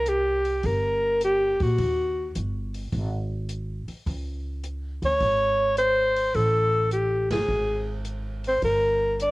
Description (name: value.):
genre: jazz, small-group swing and bop.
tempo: 105 BPM.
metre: 4/4.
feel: swing 69% on 8ths.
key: unclear.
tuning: A4 = 440 Hz.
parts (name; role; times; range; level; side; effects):
breathy alto saxophone; melody; 0.0-9.3 s; F#4 to D5; -22 LUFS; equal; cassette tape.
upright bass; bass; 0.0-9.3 s; G1 to Bb2; -29 LUFS; equal; none.
open jazz drum kit; drums; 0.1-9.3 s; hi-hat, kick drum, ride cymbal, snare drum; -37 LUFS; equal; cassette tape.
room: moderate spring reverb, RT60 1.8 s, small room ambience.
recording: home recording on cassette.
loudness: -22 LUFS.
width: side -20 dB against mid.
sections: 0.0-9.3 A section.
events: band accent 7.2.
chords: 0.0 C5; 1.8 Ebm; 2.9 N.C.; 4.1 Db5; 6.3 Gsus2; 7.5 N.C.; 8.6 Gm.